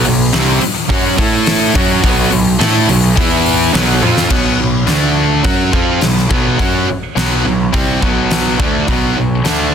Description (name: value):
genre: hard rock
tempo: 105 BPM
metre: 4/4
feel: straight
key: B minor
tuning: A4 = 440 Hz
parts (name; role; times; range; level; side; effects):
- sludgy distorted guitar; riff; 0.0-9.7 s; B2 to A4; -16 LUFS; right 10 dB; overdrive
- tight distorted guitar; riff; 0.0-9.7 s; B2 to A4; -17 LUFS; left 11 dB; distortion
- fuzz picked electric bass; bass; 0.0-9.7 s; B1 to A2; -18 LUFS; equal; overdrive
- huge arena drum kit; drums; 0.0-9.6 s; crash cymbal, hi-hat, kick drum, snare drum, toms; -16 LUFS; equal; none
room: little or no reverb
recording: dense, heavily limited modern master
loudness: -11 LUFS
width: side -8 dB against mid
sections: 0.0-4.3 A section; 4.3-9.7 B section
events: drum fill 4.0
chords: 0.0 B5; 1.2 A5; 1.8 B5; 3.2 E5; 3.7 B5; 4.9 D5; 5.5 Bm